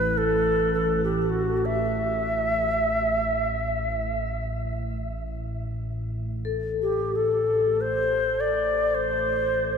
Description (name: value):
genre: world meditative, free-time meditation music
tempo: free time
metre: none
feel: none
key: A minor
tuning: A4 = 441 Hz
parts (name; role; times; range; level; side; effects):
- Native American-style cedar flute; melody; 0.0-9.8 s; F#4 to E5; -24 LUFS; equal; shimmer reverb
- analog drone; drone; 0.0-9.8 s; A1 to A2; -30 LUFS; right 1 dB; chorus
- vibraphone with medium hard mallets; texture; 0.0-0.5, 6.5-9.8 s; A4; -29 LUFS; left 8 dB; stereo widening, shimmer reverb
room: wet cathedral reverb, RT60 5.0 s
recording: in a vast, echoing space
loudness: -23 LUFS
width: side -6 dB against mid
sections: 0.0-9.8 A section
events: none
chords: none